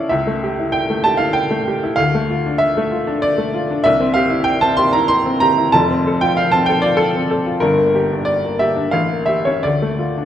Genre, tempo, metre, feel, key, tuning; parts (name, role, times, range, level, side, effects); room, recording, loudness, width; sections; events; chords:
classical, romantic character piece for solo piano; 95 BPM; 3/4; rubato; D minor; A4 = 440 Hz
clear upright piano; solo; 0.0-10.2 s; F1 to C6; -14 LUFS; equal
wet recital hall reverb, RT60 1.5 s; -14 LUFS; side -10 dB against mid
0.0-10.2 A section
0.1 A7/C#; 2.0 Dm; 3.9 C; 5.7 F; 7.6 Gm; 8.9 A7b9; 9.6 Dm